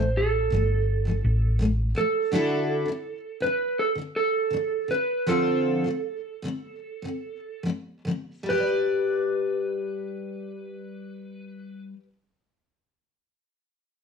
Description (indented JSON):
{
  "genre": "acoustic pop",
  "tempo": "70-83 BPM",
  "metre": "4/4",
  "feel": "straight",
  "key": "G major",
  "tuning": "A4 = 440 Hz",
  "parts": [
    { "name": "electric slide guitar", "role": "melody", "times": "0.0-11.8 s", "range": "A4 to C5", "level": "-26 LUFS", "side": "right 4 dB", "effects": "none" },
    { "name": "picked steel-string acoustic guitar", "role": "accompaniment", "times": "0.0-12.1 s", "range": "A2 to D5", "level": "-27 LUFS", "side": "left 3 dB", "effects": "double-tracked left and right" },
    { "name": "hollow-body short-scale fingered electric bass", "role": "bass", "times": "0.0-1.9 s", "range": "G1 to A1", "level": "-23 LUFS", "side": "equal", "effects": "none" }
  ],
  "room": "moderate studio reverb, RT60 0.6 s",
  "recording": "dark, warm production",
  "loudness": "-23 LUFS",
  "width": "side -6 dB against mid",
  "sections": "0.0-8.5 A section; 8.5-11.9 B section",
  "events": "slowing down 2.3-8.5",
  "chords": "0.0 A5; 2.3 Dadd9; 5.3 F6; 8.5 G"
}